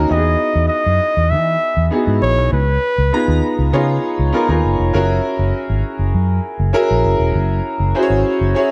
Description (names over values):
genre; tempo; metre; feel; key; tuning
polished 1980s jazz-funk pop; 99 BPM; 4/4; straight; unclear; A4 = 437 Hz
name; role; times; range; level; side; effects
warm concert grand piano; accompaniment; 0.0-8.7 s; A#3 to A#5; -20 LUFS; equal; lush chorus
vintage muted fingered electric bass; bass; 0.0-8.5 s; E1 to E3; -19 LUFS; equal; none
warm flugelhorn; melody; 0.1-3.7 s; B4 to E5; -21 LUFS; equal; none
room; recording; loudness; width
light reverb, studio reverb; none; -16 LUFS; mono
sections
0.1-8.7 A section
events
none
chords
0.1 Emaj9; 2.5 C#13; 4.9 F#9